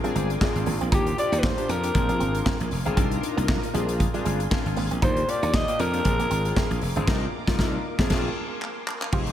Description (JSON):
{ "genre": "early-eighties boogie funk", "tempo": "117 BPM", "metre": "4/4", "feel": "swing 56% on 16ths", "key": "unclear", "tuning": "A4 = 440 Hz", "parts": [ { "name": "chorused polysynth", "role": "accompaniment", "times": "0.0-9.3 s", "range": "Bb3 to Bb4", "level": "-30 LUFS", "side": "left 3 dB", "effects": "slapback echo" }, { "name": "soft string machine", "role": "sustained chords", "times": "0.0-9.3 s", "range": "Ab3 to Eb6", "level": "-38 LUFS", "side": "equal", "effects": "ensemble chorus" }, { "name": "electric guitar with an envelope filter", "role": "riff", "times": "0.0-9.2 s", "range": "G3 to F4", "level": "-34 LUFS", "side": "right 7 dB", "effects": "wide subtle chorus" }, { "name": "modern studio drum kit", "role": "drums", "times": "0.0-9.3 s", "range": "crash cymbal, handclaps, hi-hat, kick drum, snare drum", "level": "-26 LUFS", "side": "equal", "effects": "none" }, { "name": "slap bass", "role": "bass", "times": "0.2-9.3 s", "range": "F1 to F2", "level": "-27 LUFS", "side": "equal", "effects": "none" }, { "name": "growling alto saxophone", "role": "melody", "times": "0.9-6.8 s", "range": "G4 to Eb5", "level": "-27 LUFS", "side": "equal", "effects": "none" } ], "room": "moderate lush hall reverb, RT60 2.2 s", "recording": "big arena sound", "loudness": "-22 LUFS", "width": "side -11 dB against mid", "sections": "0.0-9.1 A section", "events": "band accent 7.1-9.1; drum fill 8.6-9.1", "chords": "0.0 Bb9; 0.9 Ebmaj9; 1.9 Bb9; 3.0 Cm11; 3.7 Bb9; 5.0 Ebmaj9; 6.0 Bb9; 7.1 Cm11; 7.8 Bb9" }